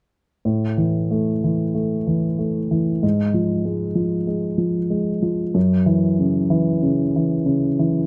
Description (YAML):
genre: neoclassical minimalist piano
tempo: 94 BPM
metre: 4/4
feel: rubato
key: A major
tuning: A4 = 440 Hz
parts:
  - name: dark concert grand piano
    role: solo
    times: 0.5-8.1 s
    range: F#2 to A3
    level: -20 LUFS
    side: equal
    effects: none
room: little or no reverb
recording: close, detailed microphones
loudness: -20 LUFS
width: mono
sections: 0.4-8.1 A section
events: none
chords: 0.4 A5; 3.0 Fm/Ab; 5.6 F#5